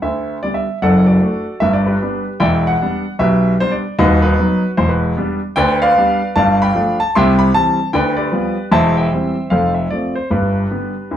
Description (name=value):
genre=jazz, stride piano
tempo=152 BPM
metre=4/4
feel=swing 63% on 8ths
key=unclear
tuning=A4 = 441 Hz
part: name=warm concert grand piano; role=solo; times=0.0-11.2 s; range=D#1 to C6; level=-13 LUFS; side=equal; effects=none
room=wet small room reverb, RT60 0.5 s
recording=heard from further back in the room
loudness=-13 LUFS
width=side -10 dB against mid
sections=0.0-11.2 A section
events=none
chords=0.0 G; 0.8 D/F#; 1.6 G; 2.4 Em7; 4.0 B/D#; 4.8 Em7; 5.6 G7/D; 6.4 G9; 7.1 C; 7.9 G7/D; 8.7 C/E; 9.5 F; 10.3 G